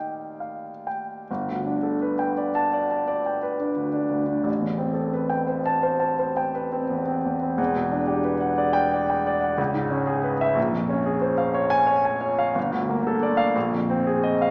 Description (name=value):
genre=classical, impressionist solo piano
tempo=43-63 BPM (dotted quarters)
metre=9/8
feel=rubato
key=unclear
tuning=A4 = 439 Hz
part: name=warm concert grand piano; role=solo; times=0.0-14.5 s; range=E1 to A5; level=-24 LUFS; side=equal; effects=none
room=wet recital hall reverb, RT60 1.6 s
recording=recorded in a church or concert hall, small speaker sound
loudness=-24 LUFS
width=mono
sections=0.0-1.3 A section; 1.3-14.5 B section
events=none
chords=0.0 Ebmaj9; 1.3 Gadd9; 4.5 Am9; 7.6 Em9; 9.6 C#m7; 10.6 Bbm9; 12.6 Gm9; 13.6 Bb9sus4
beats=| 1.29 2.39 3.45 | 4.48 5.53 6.58 | 7.59 8.59 9.59 | 10.57 11.57 12.56 | 13.55